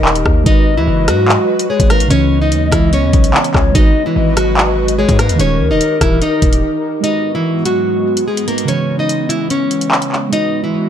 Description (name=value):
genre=hip hop, drill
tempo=146 BPM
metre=4/4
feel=half-time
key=G# minor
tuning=A4 = 440 Hz
part: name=nylon-string guitar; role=melody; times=0.0-10.9 s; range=E3 to D#5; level=-16 LUFS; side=equal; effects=tape echo
part: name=muted felt-like synth keys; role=accompaniment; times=0.0-10.9 s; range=C#3 to D#5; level=-22 LUFS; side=right 4 dB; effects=chorus
part: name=airy breathy pad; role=sustained chords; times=0.0-10.9 s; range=G#2 to D#5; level=-22 LUFS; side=right 1 dB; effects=chorus
part: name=hard-hitting 808-style bass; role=bass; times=0.0-6.6 s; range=D#1 to G#2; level=-16 LUFS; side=equal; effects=none
part: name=drill drum kit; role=drums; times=0.1-10.4 s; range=handclaps, hi-hat, kick drum, rim click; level=-14 LUFS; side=equal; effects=none
part: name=hollow clarinet-like synth lead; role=second line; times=0.5-7.0 s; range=A#4 to D#5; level=-22 LUFS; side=left 6 dB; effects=chorus, tape echo
room=digital ambience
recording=none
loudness=-11 LUFS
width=side -9 dB against mid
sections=0.0-7.0 A section; 7.0-10.9 B section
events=break 6.6-7.0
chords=0.5 G#m7; 2.1 C#m7; 3.8 G#m7; 5.4 D#; 7.0 G#m7; 8.7 C#m7; 10.3 G#m7